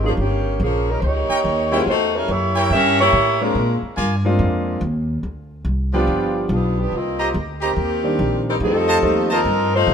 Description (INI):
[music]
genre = jazz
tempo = 142 BPM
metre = 4/4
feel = swing 65% on 8ths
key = unclear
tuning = A4 = 443 Hz
[part]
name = mellow saxophone section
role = melody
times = 0.0-3.8, 6.5-9.9 s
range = Eb3 to E5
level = -19 LUFS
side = equal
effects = none
[part]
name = clear concert grand piano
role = accompaniment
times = 0.0-9.3 s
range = Eb3 to Gb4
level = -23 LUFS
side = equal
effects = none
[part]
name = upright bass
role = bass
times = 0.0-9.9 s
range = G1 to Bb2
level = -22 LUFS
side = equal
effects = none
[part]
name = clear trumpet section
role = stabs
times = 1.3-9.4 s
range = Eb4 to Bb5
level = -24 LUFS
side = right 2 dB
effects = none
[sound]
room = moderate echo chamber reverb, RT60 2.0 s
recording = minimal, uncompressed stereo recording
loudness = -17 LUFS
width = side -7 dB against mid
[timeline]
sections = 0.0-9.9 A section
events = none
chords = 0.2 Eb7; 1.9 Edim7; 3.6 Bb7; 5.2 Csus24; 6.1 G7; 6.9 Cm7; 8.6 F7